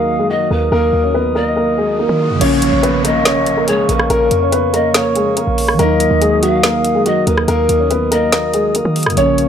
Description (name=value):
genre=hip hop, trap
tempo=142 BPM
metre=4/4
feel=half-time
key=unclear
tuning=A4 = 440 Hz
part: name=dark baby grand piano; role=melody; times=0.0-9.5 s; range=Gb3 to Db5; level=-16 LUFS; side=left 1 dB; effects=low-pass filter, analog delay
part: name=mellow hollow pan flute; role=second line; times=0.0-9.5 s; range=Bb4 to F5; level=-19 LUFS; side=left 3 dB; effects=analog delay
part: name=mellow tine electric piano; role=accompaniment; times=0.0-9.5 s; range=Db3 to Eb4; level=-20 LUFS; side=right 1 dB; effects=medium stereo tremolo, low-pass filter
part: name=glass harmonica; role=sustained chords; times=0.0-9.5 s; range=Gb4 to Eb6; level=-22 LUFS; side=right 5 dB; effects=low-pass filter
part: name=short 808-style bass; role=bass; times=0.0-9.5 s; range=Bb1 to Eb3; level=-21 LUFS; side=equal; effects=none
part: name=riser and downlifter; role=sound effects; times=1.6-5.8 s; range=none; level=-26 LUFS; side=equal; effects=none
part: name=trap drum kit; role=drums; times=2.4-9.5 s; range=crash cymbal, hi-hat, rim click, snare drum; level=-18 LUFS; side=equal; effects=none
room=small room ambience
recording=dry, gritty hardware recording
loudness=-12 LUFS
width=side -8 dB against mid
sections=0.0-2.4 A section; 2.4-9.5 B section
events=riser 1.6-2.4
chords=0.0 Ebm; 2.4 Bbm; 5.8 Ebm